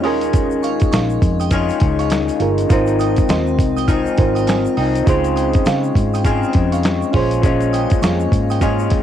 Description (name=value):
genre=indie pop, bedroom pop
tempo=102 BPM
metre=4/4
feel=swing 60% on 16ths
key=unclear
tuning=A4 = 440 Hz
part: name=glassy synth bell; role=second line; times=0.0-8.8 s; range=Eb5 to F6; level=-28 LUFS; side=right 11 dB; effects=phaser, lush chorus, cassette tape, tape echo
part: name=electric guitar through a small old amp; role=accompaniment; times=0.0-9.0 s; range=Ab2 to F4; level=-19 LUFS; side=left 9 dB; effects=wide subtle chorus, warbly pitch drift, cassette tape
part: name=reed electric piano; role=accompaniment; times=0.0-9.0 s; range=Db4 to Eb5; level=-22 LUFS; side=right 10 dB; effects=cassette tape
part: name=vintage muted fingered electric bass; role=bass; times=0.0-9.0 s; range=G1 to Db3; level=-21 LUFS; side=equal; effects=transformer saturation
part: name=dusty soul sampler-style drum kit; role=drums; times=0.0-9.0 s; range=hi-hat, kick drum, snare drum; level=-18 LUFS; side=equal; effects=cassette tape
part: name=tube shaker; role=percussion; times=0.2-8.9 s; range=none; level=-43 LUFS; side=left 12 dB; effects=none
room=light reverb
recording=home recording on cassette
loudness=-14 LUFS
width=side -10 dB against mid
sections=0.0-9.0 A section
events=none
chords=0.0 Eb9sus4; 2.7 Ab6; 5.1 Dbmaj7; 7.1 Bbm7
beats=| 0.34 0.93 1.52 2.11 | 2.70 3.30 3.89 4.48 | 5.07 5.66 6.25 6.84 | 7.43 8.03 8.62